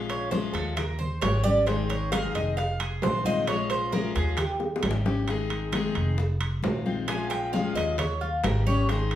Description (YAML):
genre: latin, Cuban son and guajira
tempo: 133 BPM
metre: 4/4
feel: straight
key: unclear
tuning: A4 = 442 Hz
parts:
  - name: picked steel-string acoustic guitar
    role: accompaniment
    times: 0.0-9.2 s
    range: Eb3 to Ab4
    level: -30 LUFS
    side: left 4 dB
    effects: none
  - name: upright bass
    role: bass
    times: 0.0-9.2 s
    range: F1 to Eb2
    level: -29 LUFS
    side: equal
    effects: none
  - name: Cuban tres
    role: arpeggios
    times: 0.1-9.2 s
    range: F4 to Ab5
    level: -29 LUFS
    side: right 2 dB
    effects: none
  - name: congas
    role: percussion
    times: 0.1-9.2 s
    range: none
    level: -34 LUFS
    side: left 1 dB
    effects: none
  - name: timbales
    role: percussion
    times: 0.1-9.2 s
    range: none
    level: -34 LUFS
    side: right 4 dB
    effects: none
  - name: bongos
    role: percussion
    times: 0.3-9.2 s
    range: none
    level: -35 LUFS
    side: left 2 dB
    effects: none
room: wet large studio reverb, RT60 0.8 s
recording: band playing live in one room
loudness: -24 LUFS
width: side -12 dB against mid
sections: 0.0-9.2 A section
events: Cuban tres solo 0.0-9.2; drum fill 4.6-5.3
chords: 0.0 Bbm7; 0.8 Eb7; 1.7 Ab; 2.6 Fm7; 3.5 Bbm7; 4.4 Eb7; 5.3 Ab; 6.2 Fm7; 7.1 Bbm7; 8.0 Eb7